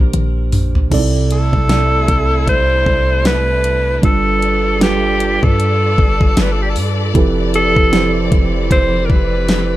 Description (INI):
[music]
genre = contemporary R&B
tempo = 77 BPM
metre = 4/4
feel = swing 58% on 16ths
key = C major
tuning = A4 = 439 Hz
[part]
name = warm alto saxophone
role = melody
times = 0.0-9.8 s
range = G4 to C5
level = -17 LUFS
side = equal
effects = digital delay
[part]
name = muted felt-like synth keys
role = accompaniment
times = 0.0-9.8 s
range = Bb2 to D5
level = -19 LUFS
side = right 5 dB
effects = chorus
[part]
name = warm 808-style bass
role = bass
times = 0.0-9.8 s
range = E1 to G2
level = -18 LUFS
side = left 1 dB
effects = none
[part]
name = smooth R&B drum kit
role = drums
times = 0.1-9.7 s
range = crash cymbal, hi-hat, kick drum, snare drum, toms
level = -15 LUFS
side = equal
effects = none
[part]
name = dark symphonic string section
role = sustained chords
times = 0.9-9.8 s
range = C3 to D5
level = -26 LUFS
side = left 3 dB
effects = none
[sound]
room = little or no reverb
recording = none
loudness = -12 LUFS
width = side -15 dB against mid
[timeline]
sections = 0.0-9.8 A section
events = drum fill 0.1-0.9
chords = 0.0 Bb69; 0.9 C69; 4.0 G9; 7.2 Fmaj9#11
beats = 0.14 | 0.92 1.70 2.48 3.25 | 4.03 4.81 5.59 6.37 | 7.15 7.93 8.71 9.49